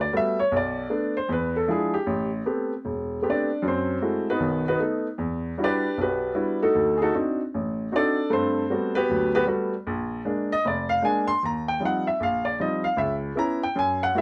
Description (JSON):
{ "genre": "solo jazz", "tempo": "154 BPM", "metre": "4/4", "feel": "swing 64% on 8ths", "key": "G major", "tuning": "A4 = 442 Hz", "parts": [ { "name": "clear upright piano", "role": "solo", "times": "0.0-14.2 s", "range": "E1 to C6", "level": "-25 LUFS", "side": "equal", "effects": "none" } ], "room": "light reverb", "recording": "none", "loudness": "-25 LUFS", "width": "mono", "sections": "0.0-11.4 A section; 11.4-14.2 A section", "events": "upright piano solo 0.0-14.2", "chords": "0.0 Gmaj9; 0.5 Bm7; 1.3 E7b9; 2.1 Am9; 3.6 F#m9; 4.4 B7; 5.2 Em9; 6.7 D7b9; 8.3 Gmaj9; 9.9 Bb7; 11.4 Eb69; 13.0 Dbm7", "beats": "0.11 | 0.50 0.89 1.28 1.67 | 2.06 2.45 2.84 3.23 | 3.62 4.01 4.41 4.79 | 5.18 5.57 5.96 6.35 | 6.74 7.13 7.52 7.91 | 8.30 8.69 9.08 9.46 | 9.85 10.24 10.63 11.02 | 11.41 11.80 12.19 12.57 | 12.96 13.35 13.74 14.13" }